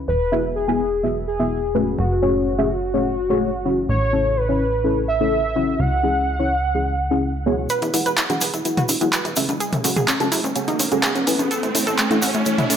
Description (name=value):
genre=progressive house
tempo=126 BPM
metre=4/4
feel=straight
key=E major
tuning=A4 = 436 Hz
part: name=deep mellow chord stab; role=stabs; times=0.0-12.7 s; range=A3 to A5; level=-22 LUFS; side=left 2 dB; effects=chorus, phaser, dub echo
part: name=plucky analog bass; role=bass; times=0.0-12.8 s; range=E1 to F#2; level=-26 LUFS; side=right 1 dB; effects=high-pass filter
part: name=warm velvety synth lead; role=melody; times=0.1-7.6 s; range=F#4 to F#5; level=-22 LUFS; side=equal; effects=chorus, dub echo
part: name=analog pluck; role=arpeggios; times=7.7-12.8 s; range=A3 to B4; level=-23 LUFS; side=equal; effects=chorus, dub echo
part: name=deep house drum kit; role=drums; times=7.7-12.8 s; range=handclaps, hi-hat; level=-23 LUFS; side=right 1 dB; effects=overdrive
part: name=tube shaker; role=percussion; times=7.7-12.8 s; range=none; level=-28 LUFS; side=equal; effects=none
part: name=riser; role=sound effects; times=9.3-12.8 s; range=none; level=-28 LUFS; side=right 3 dB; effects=none
part: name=electronic congas and toms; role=percussion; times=8.3-12.8 s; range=none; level=-24 LUFS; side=left 1 dB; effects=none
room=moderate recital hall reverb, RT60 1.6 s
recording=none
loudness=-18 LUFS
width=side -8 dB against mid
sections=0.0-7.7 A section; 7.7-12.8 B section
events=build-up 7.7-12.8; riser 9.3-12.8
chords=0.1 Eadd9; 2.0 F#madd9; 3.9 A; 5.8 C#m; 7.7 Eadd9; 11.5 A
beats=| 0.08 0.56 1.03 1.51 | 1.99 2.46 2.94 3.42 | 3.89 4.37 4.84 5.32 | 5.80 6.27 6.75 7.22 | 7.70 8.18 8.65 9.13 | 9.61 10.08 10.56 11.03 | 11.51 11.99 12.46